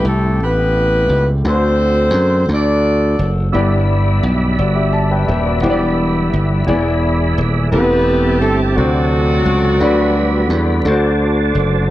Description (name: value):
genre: gospel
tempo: 57 BPM (dotted quarters)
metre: 6/8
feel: straight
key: G major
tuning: A4 = 437 Hz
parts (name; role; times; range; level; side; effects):
- warm horn section; melody; 0.0-3.5, 7.7-11.2 s; F#3 to D5; -17 LUFS; equal; none
- clear grand piano; accompaniment; 0.0-11.9 s; G2 to A5; -19 LUFS; left 2 dB; none
- slap bass; bass; 0.0-11.9 s; Eb1 to F#2; -16 LUFS; equal; none
- percussive tonewheel organ; sustained chords; 3.5-11.9 s; G3 to B5; -21 LUFS; right 2 dB; slow rotary speaker, chorus vibrato
room: little or no reverb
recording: dry, close 1970s-style studio recording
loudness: -12 LUFS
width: side -15 dB against mid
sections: 0.0-11.9 A section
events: none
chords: 0.0 Am7; 1.5 D7; 3.5 G6; 5.6 Em7; 6.7 E7; 7.7 Am7/E; 8.8 D7; 9.8 G/D; 10.9 D7